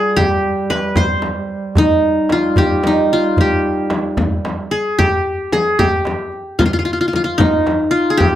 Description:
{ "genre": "Arabic maqam ensemble", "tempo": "75 BPM (dotted quarters)", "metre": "6/8", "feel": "straight", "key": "G maqam hijaz", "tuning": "A4 = 440 Hz", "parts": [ { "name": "qanun", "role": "melody", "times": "0.0-8.4 s", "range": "Eb4 to C5", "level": "-15 LUFS", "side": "left 1 dB", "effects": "none" }, { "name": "mellow duduk", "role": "drone", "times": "0.0-5.0 s", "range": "G3", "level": "-24 LUFS", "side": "right 5 dB", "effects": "none" }, { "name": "darbuka", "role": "percussion", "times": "0.2-8.3 s", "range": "none", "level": "-23 LUFS", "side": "right 2 dB", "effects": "none" }, { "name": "frame drum", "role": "percussion", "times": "0.2-8.3 s", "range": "none", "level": "-19 LUFS", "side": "left 1 dB", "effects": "none" } ], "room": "light reverb", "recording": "dry, close 1970s-style studio recording", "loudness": "-14 LUFS", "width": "side -12 dB against mid", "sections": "0.0-5.0 A section; 5.0-8.4 B section", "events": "none", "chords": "none" }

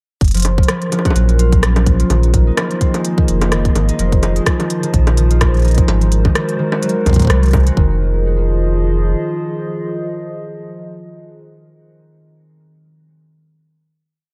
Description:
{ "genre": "IDM", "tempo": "127 BPM", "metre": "4/4", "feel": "swing 56% on 16ths", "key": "F phrygian", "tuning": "A4 = 441 Hz", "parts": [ { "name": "warbly tape-like pad", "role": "sustained chords", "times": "0.2-12.0 s", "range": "F3 to Eb5", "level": "-25 LUFS", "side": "equal", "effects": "chorus, built-in reverb" }, { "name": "warm sub bass", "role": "bass", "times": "0.2-9.1 s", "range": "F1 to C2", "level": "-16 LUFS", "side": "equal", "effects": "tube saturation" }, { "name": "electronic kick drum", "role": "drums", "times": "0.2-7.9 s", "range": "none", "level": "-17 LUFS", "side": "equal", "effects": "none" }, { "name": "organic electronic drum kit", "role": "drums", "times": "0.2-7.8 s", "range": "bongos, hi-hat, rim click", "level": "-24 LUFS", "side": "equal", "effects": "analog delay" }, { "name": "concert harp", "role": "arpeggios", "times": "0.3-11.7 s", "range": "Eb3 to Gb4", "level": "-23 LUFS", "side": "equal", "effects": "tape echo" } ], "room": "light reverb", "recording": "echo-heavy mix", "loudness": "-15 LUFS", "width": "mono", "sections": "0.2-7.8 groove; 7.8-11.6 final chord", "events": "none", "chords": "0.2 Gbmaj7; 2.1 Fm7; 5.9 Ab7; 7.8 Fm7" }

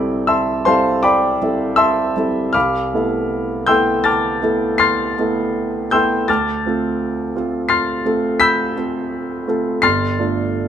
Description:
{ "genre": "classical, impressionist solo piano", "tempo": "78-87 BPM", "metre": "5/4", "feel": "rubato", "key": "unclear", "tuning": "A4 = 439 Hz", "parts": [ { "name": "warm grand piano", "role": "solo", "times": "0.0-10.7 s", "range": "G1 to C7", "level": "-15 LUFS", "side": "equal", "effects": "none" } ], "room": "light reverb", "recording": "close, detailed microphones", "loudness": "-15 LUFS", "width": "side -9 dB against mid", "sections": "0.0-10.7 A section", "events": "none", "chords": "0.0 Fmaj7#11/C; 6.3 Dm7; 9.8 G11" }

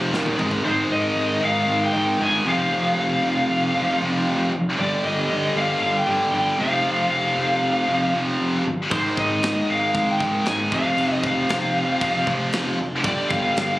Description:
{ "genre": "heavy metal", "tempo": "116 BPM", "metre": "4/4", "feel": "straight", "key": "unclear", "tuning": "A4 = 440 Hz", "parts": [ { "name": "heavy high-gain guitar", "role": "riff", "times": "0.0-13.8 s", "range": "Eb2 to Ab3", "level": "-28 LUFS", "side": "left 3 dB", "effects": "distortion" }, { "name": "heavy high-gain guitar", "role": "riff", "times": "0.0-13.8 s", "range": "Eb2 to Ab3", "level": "-24 LUFS", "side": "right 2 dB", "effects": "distortion" }, { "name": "fuzz picked electric bass", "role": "bass", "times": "0.0-13.7 s", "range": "Eb1 to Ab1", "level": "-29 LUFS", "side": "left 1 dB", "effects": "overdrive" }, { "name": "tight metal drum kit", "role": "drums", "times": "0.1-0.6, 8.9-13.7 s", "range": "crash cymbal, kick drum, snare drum, toms", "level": "-29 LUFS", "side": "equal", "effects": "none" }, { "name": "high-gain lead guitar", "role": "melody", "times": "0.7-13.8 s", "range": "C5 to Ab5", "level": "-23 LUFS", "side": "left 1 dB", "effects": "distortion, ping-pong delay" } ], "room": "studio ambience", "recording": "recorded on a phone in the room, club reverb", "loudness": "-19 LUFS", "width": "side -17 dB against mid", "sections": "0.6-13.8 A section", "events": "drum fill 0.1-0.6", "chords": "0.0 F5; 0.6 Ab5; 2.4 F5; 4.8 G5; 6.6 F5; 8.9 Ab5; 10.7 F5; 13.0 G5" }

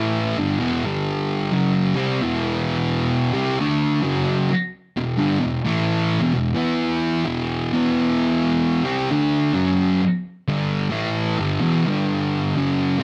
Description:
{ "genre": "metal", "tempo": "87 BPM", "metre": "4/4", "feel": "swing 62% on 8ths", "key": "E minor", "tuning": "A4 = 441 Hz", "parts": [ { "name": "thick fuzz guitar", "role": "solo", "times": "0.0-13.0 s", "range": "E2 to E4", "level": "-21 LUFS", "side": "equal", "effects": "distortion" } ], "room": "moderate large studio reverb, RT60 0.8 s, digital ambience", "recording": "dark, warm production, nothing above 10.8 kHz", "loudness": "-21 LUFS", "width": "mono", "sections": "0.0-2.2 A section; 2.2-13.0 B section", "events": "none", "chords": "0.0 Em; 0.9 G5; 1.5 F#5; 2.2 Em; 11.9 G5" }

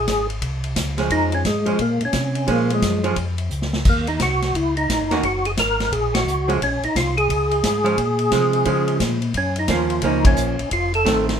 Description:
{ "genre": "soul jazz organ trio", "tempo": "175 BPM", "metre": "4/4", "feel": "swing 64% on 8ths", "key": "Bb minor", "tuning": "A4 = 441 Hz", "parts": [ { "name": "percussive tonewheel organ", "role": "melody", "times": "0.0-11.3 s", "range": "Ab3 to Bb4", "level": "-21 LUFS", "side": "equal", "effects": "slow rotary speaker, chorus vibrato" }, { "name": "mellow tonewheel organ", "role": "bass", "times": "0.0-11.4 s", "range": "F1 to Db3", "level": "-24 LUFS", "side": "left 1 dB", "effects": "chorus vibrato, slow rotary speaker" }, { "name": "vintage drum kit", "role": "drums", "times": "0.1-11.3 s", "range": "crash cymbal, hi-hat, kick drum, ride cymbal, snare drum", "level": "-24 LUFS", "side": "left 1 dB", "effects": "none" }, { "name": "archtop guitar, miked and amplified", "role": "accompaniment", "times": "1.0-11.4 s", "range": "Eb3 to Gb4", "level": "-22 LUFS", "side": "right 4 dB", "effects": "none" } ], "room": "moderate club reverb, RT60 0.6 s", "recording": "minimal, uncompressed stereo recording", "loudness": "-18 LUFS", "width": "side -8 dB against mid", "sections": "0.0-11.4 A section", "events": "drum fill 3.5-3.9; band accent 6.1, 10.2", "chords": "0.0 Bbm7; 3.9 Ebm7; 6.6 Bbm7; 9.3 Gbmaj7; 10.7 F7" }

